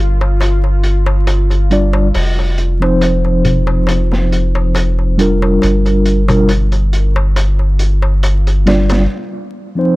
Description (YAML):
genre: trip hop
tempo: 69 BPM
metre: 4/4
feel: swing 53% on 16ths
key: G minor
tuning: A4 = 438 Hz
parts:
  - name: soft dub sub bass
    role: bass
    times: 0.0-9.1 s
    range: F1 to G1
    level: -13 LUFS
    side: equal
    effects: none
  - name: bowed-like drone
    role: texture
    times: 0.0-9.1 s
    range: F4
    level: -28 LUFS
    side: equal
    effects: built-in reverb
  - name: darbuka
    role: percussion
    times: 0.2-9.1 s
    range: none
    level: -22 LUFS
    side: left 1 dB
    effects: none
  - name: crunchy breakbeat drum kit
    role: drums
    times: 0.4-9.1 s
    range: hi-hat, snare drum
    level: -22 LUFS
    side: equal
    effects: low-pass filter on hats, low-pass filter on snare, low-pass filter on room
  - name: mellow tine electric piano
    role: accompaniment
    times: 1.7-10.0 s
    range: F3 to D5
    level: -15 LUFS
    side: equal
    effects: medium stereo tremolo, low-pass filter, tape echo
room: small room ambience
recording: dark, warm production, vinyl crackle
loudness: -11 LUFS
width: side -20 dB against mid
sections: 0.0-10.0 A section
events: break 9.1-10.0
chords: 0.0 G7(no3); 2.1 F5; 5.6 Gm7; 9.1 F5